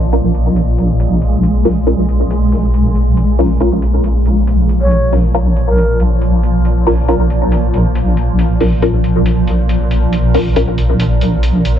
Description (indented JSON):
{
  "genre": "deep dubstep",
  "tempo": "138 BPM",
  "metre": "4/4",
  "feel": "swing 55% on 16ths, half-time",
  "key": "Bb minor",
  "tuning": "A4 = 440 Hz",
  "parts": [
    { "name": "granular cloud pad", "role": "sustained chords", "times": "0.0-11.8 s", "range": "Bb2 to Ab3", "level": "-17 LUFS", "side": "equal", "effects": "built-in reverb" },
    { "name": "deep soft wobble bass", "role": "bass", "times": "0.0-11.8 s", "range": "Bb1", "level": "-13 LUFS", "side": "equal", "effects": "chorus" },
    { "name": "filtered dub chord stab", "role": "stabs", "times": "0.1-10.6 s", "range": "Db4 to Bb4", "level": "-19 LUFS", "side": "left 2 dB", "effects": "phaser, ensemble chorus, dub echo" },
    { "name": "electronic hi-hat", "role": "drums", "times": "0.1-11.7 s", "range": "none", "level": "-32 LUFS", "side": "left 1 dB", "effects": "low-pass filter on hats" },
    { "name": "breathy bright long shakuhachi", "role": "melody", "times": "4.8-6.0, 11.8 s", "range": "Bb4 to Db5", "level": "-23 LUFS", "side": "equal", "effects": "dub echo" }
  ],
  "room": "little or no reverb",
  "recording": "low-pass filter",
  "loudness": "-11 LUFS",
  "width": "side -10 dB against mid",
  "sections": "0.0-11.8 A section",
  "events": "filter sweep on drum 0.0-11.8; filter sweep on synth stab 0.0-11.8; filter sweep 0.0-11.8",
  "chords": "0.0 Bbm"
}